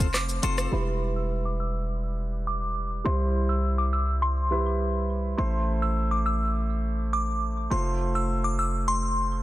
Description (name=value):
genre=dancehall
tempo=103 BPM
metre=4/4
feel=straight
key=E phrygian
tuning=A4 = 444 Hz
part: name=warm concert grand piano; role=accompaniment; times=0.0-9.4 s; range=G3 to C5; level=-32 LUFS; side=right 3 dB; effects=low-pass filter
part: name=clean electric guitar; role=arpeggios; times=0.0-0.7 s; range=C4 to C5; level=-35 LUFS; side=left 9 dB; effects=none
part: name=hard-hitting 808-style bass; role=bass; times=0.0-9.4 s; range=E1 to C2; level=-27 LUFS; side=equal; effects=none
part: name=island pop drum kit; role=drums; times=0.0-0.7 s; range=handclaps, hi-hat, kick drum, rim click, shaker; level=-28 LUFS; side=equal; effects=none
part: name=glassy synth bell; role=melody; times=0.1-9.3 s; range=B5 to E6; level=-30 LUFS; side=left 1 dB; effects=chorus, low-pass filter, tape echo
part: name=cabasa and woodblock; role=percussion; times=0.4-0.6 s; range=none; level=barely audible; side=none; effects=none
room=light reverb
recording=dense, heavily limited modern master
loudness=-24 LUFS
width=side -15 dB against mid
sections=0.7-9.4 A section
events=filter sweep 0.7-9.4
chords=0.0 F; 0.7 Em; 3.1 C; 5.4 Am; 7.7 F